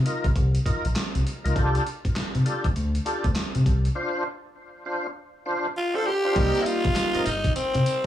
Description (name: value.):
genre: R&B, new jack swing.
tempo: 100 BPM.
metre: 4/4.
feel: swing 62% on 16ths.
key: C dorian.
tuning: A4 = 440 Hz.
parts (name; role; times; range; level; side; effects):
deep dub fingered electric bass; bass; 0.0-7.8 s; G1 to C3; -23 LUFS; equal; none.
tonewheel organ; stabs; 0.1-8.1 s; C4 to C5; -30 LUFS; equal; overdrive, chorus vibrato, slow rotary speaker, tape echo.
boom bap sampler-style drum kit; drums; 0.1-8.0 s; crash cymbal, handclaps, hi-hat, kick drum, snare drum, tambourine; -27 LUFS; equal; none.
raspy tenor saxophone; melody; 5.8-8.1 s; C4 to A4; -24 LUFS; equal; none.
clear baby grand piano; accompaniment; 6.3-8.1 s; G3 to D5; -29 LUFS; right 1 dB; none.
room: light reverb.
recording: small room ambience.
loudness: -22 LUFS.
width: side -12 dB against mid.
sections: 0.0-6.4 A section; 6.4-8.1 B section.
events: break 4.0-6.4.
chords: 0.0 F7sus4/C; 1.6 F69/C; 3.7 Dm7/C; 6.4 Cm7.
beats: 0.36 0.96 | 1.56 2.16 2.76 3.36 | 3.96 4.56 5.16 5.76 | 6.36 6.96 7.56.